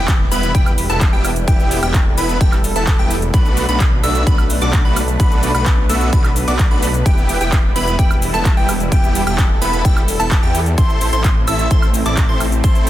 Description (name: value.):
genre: EDM, festival progressive house.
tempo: 129 BPM.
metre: 4/4.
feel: straight.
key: E minor.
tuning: A4 = 441 Hz.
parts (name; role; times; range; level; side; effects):
lush unison pad; sustained chords; 0.0-12.9 s; G3 to B4; -24 LUFS; equal; chorus, phaser, sidechain pumping.
plucky unison lead; arpeggios; 0.0-12.9 s; G5 to E6; -23 LUFS; equal; sidechain pumping, tape echo.
big supersaw lead; riff; 0.0-12.9 s; A3 to E5; -22 LUFS; right 1 dB; cassette tape, sidechain pumping, tape echo.
detuned saw bass; bass; 0.0-12.9 s; E1 to E2; -21 LUFS; equal; sidechain pumping.
impact; sound effects; 0.0-1.5 s; none; -30 LUFS; equal; none.
big-room dance drum kit; drums; 0.1-12.9 s; handclaps, hi-hat, shaker, woodblock; -24 LUFS; right 1 dB; small room ambience.
electronic kick drum; drums; 0.1-12.7 s; none; -14 LUFS; equal; small room ambience.
room: little or no reverb.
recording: dense, heavily limited modern master.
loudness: -13 LUFS.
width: side -13 dB against mid.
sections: 0.0-12.9 A section.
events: impact 0.0-1.5.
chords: 0.0 Em; 3.3 Bm7; 7.1 Em; 10.8 Am.